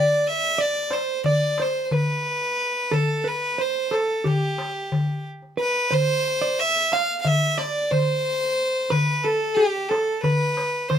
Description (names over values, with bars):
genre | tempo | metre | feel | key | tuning
Turkish makam ensemble | 180 BPM (eighths) | 9/8 | straight | C makam rast | A4 = 440 Hz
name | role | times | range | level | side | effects
clear violin | melody | 0.0-11.0 s | G4 to F5 | -22 LUFS | equal | none
hollow-body jazz guitar | second line | 0.0-11.0 s | G4 to F5 | -28 LUFS | right 4 dB | none
darbuka | percussion | 0.6-11.0 s | none | -24 LUFS | left 2 dB | none
room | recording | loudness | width
moderate studio reverb, RT60 0.6 s | minimal, uncompressed stereo recording | -20 LUFS | side -9 dB against mid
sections
0.0-11.0 A section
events
none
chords
none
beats
0.25 0.59 0.92 1.25 1.59 1.92 2.25 2.59 | 2.92 3.25 3.59 3.92 4.25 4.59 4.92 5.25 5.59 | 5.92 6.25 6.59 6.92 7.25 7.59 7.92 8.25 8.59 | 8.92 9.25 9.58 9.92 10.25 10.58 10.91